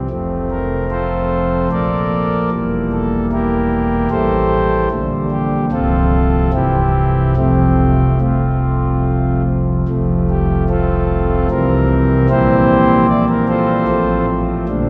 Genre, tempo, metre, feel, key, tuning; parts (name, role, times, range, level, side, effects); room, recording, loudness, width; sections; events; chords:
classical, chorale-style piece for pipe organ; 75 BPM; 3/4; straight; F major; A4 = 440 Hz
pipe organ, principal; solo; 0.0-14.9 s; C1 to D5; -16 LUFS; equal
wet cathedral reverb, RT60 5.0 s; heard from further back in the room; -16 LUFS; mono
0.0-9.9 A section; 9.9-14.9 A section
0.1 F; 1.7 Bbmaj7; 2.5 Edim; 4.1 Am7; 4.9 Gm/Bb; 5.7 F/C; 6.5 C; 7.4 F; 11.5 C; 12.3 C7/Bb; 13.9 F/A